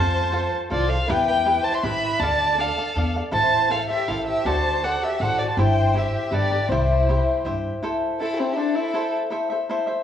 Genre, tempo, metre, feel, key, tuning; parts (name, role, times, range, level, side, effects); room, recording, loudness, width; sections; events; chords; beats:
mexican folk, mariachi; 160 BPM; 3/4; straight; C major; A4 = 440 Hz
dark violin; melody; 0.0-9.1 s; C4 to C6; -23 LUFS; equal
warm symphonic violin section; second line; 0.0-9.1 s; E4 to E5; -30 LUFS; right 1 dB
cavaquinho; accompaniment; 0.0-10.0 s; D4 to F5; -26 LUFS; left 2 dB
upright bass; bass; 0.0-7.7 s; G1 to G2; -25 LUFS; equal
moderate recital hall reverb, RT60 1.4 s; recorded in a church or concert hall; -20 LUFS; side -9 dB against mid
0.0-7.8 A section; 7.8-10.0 B section
0.0 F; 1.1 Em; 2.2 Dm; 3.3 Am; 4.5 D7; 5.6 C/G; 6.3 Gadd9; 6.7 C; 7.8 Am
0.34 0.72 | 1.09 1.46 1.84 | 2.21 2.58 2.96 | 3.34 3.71 4.09 | 4.46 4.84 5.21 | 5.58 5.95 6.33 | 6.70 7.07 7.45 | 7.83 8.20 8.57 | 8.95 9.32 9.70